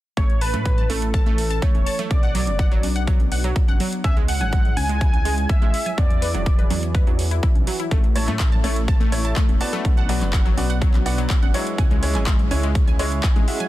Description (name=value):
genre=progressive house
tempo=124 BPM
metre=4/4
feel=straight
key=A major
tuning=A4 = 443 Hz
part: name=wide unison lead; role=melody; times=0.2-6.9 s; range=A4 to G#5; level=-28 LUFS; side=equal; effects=sidechain pumping, digital delay
part: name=lush unison pad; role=sustained chords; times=0.2-13.7 s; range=E3 to B4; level=-32 LUFS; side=left 1 dB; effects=chorus, sidechain pumping
part: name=analog pluck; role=arpeggios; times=0.2-13.7 s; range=F#3 to A5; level=-29 LUFS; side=left 1 dB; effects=chorus, sidechain pumping, digital delay
part: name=dark detuned saw bass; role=bass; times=0.2-13.5 s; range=E1 to A2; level=-24 LUFS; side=equal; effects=sidechain pumping
part: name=deep house drum kit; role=drums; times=0.2-13.7 s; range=handclaps, hi-hat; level=-31 LUFS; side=equal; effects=overdrive, sidechain pumping on hats, studio reverb
part: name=electronic kick drum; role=drums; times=0.2-13.3 s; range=none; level=-18 LUFS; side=equal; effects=overdrive, studio reverb
part: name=congas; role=percussion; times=0.2-13.7 s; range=none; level=-34 LUFS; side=right 2 dB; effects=sidechain pumping on perc, studio reverb
part: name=clear grand piano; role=stabs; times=8.2-13.7 s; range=G#3 to E5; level=-28 LUFS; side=right 2 dB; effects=vintage 12-bit sampler grit, sidechain pumping, digital delay
room=little or no reverb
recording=dense, heavily limited modern master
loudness=-17 LUFS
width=side -15 dB against mid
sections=0.2-13.7 A section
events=filter sweep on analog synth pad 0.2-13.7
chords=0.2 A; 2.1 Bm; 4.0 C#m; 6.0 Eadd9; 7.9 A; 9.8 Bm; 11.8 C#m